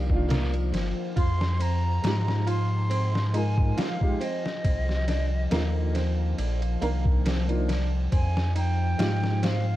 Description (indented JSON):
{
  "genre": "trip hop",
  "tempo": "69 BPM",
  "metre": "4/4",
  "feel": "swing 54% on 16ths",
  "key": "C minor",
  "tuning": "A4 = 442 Hz",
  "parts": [
    { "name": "mellow hollow silver concert flute", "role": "melody", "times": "0.0-9.8 s", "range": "Eb5 to C6", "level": "-34 LUFS", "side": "equal", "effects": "vintage 12-bit sampler grit, tape echo" },
    { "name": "dark upright piano", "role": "accompaniment", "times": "0.0-9.8 s", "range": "D3 to Bb4", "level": "-33 LUFS", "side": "right 1 dB", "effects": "tremolo, tape echo" },
    { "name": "deep dark ambient pad", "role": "sustained chords", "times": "0.0-9.8 s", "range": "F3 to F4", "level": "-35 LUFS", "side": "left 2 dB", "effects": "chorus, built-in reverb" },
    { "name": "flamenco guitar", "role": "arpeggios", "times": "0.0-9.6 s", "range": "Bb3 to F4", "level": "-36 LUFS", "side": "right 4 dB", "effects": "vintage 12-bit sampler grit, tape echo" },
    { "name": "warm sub bass", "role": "bass", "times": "0.0-9.8 s", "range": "G1 to Ab2", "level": "-25 LUFS", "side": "equal", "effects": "tube saturation" },
    { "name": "trip hop sampler-style drum kit", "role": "drums", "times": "0.1-9.7 s", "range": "kick drum, ride cymbal, snare drum", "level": "-29 LUFS", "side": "equal", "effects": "none" }
  ],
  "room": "little or no reverb",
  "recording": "dark, warm production, vinyl crackle",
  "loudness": "-23 LUFS",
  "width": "side -15 dB against mid",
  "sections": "0.0-9.8 A section",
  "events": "none",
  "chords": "0.0 Cm11; 1.2 Fm9; 4.6 Cm11; 8.1 Fm9"
}